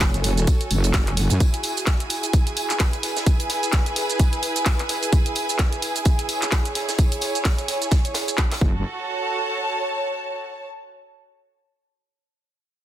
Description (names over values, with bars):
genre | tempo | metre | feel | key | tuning
bass house | 129 BPM | 4/4 | swing 57% on 16ths | F# minor | A4 = 440 Hz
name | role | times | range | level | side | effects
wobble bass | bass | 0.0-1.4, 8.6-8.8 s | F#1 to F#2 | -21 LUFS | equal | chorus, overdrive, sidechain pumping
electronic kick drum | drums | 0.0-8.7 s | none | -19 LUFS | equal | studio reverb
garage drum kit | drums | 0.0-8.6 s | handclaps, hi-hat, shaker | -26 LUFS | right 1 dB | studio reverb
tight funk drum kit | drums | 0.0-8.6 s | hi-hat, snare drum, tambourine | -33 LUFS | equal | high-pass filter on hats, studio reverb, high-pass filter on snare, high-pass filter on perc, high-pass filter on room
rich symphonic string section | texture | 0.0-10.7 s | E4 to A5 | -26 LUFS | right 1 dB | sidechain pumping
room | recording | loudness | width
light reverb, studio reverb | dense, heavily limited modern master | -19 LUFS | side -12 dB against mid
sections
0.0-8.8 A section; 8.8-10.7 B section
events
none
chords
0.0 F#m; 1.4 E; 8.6 F#m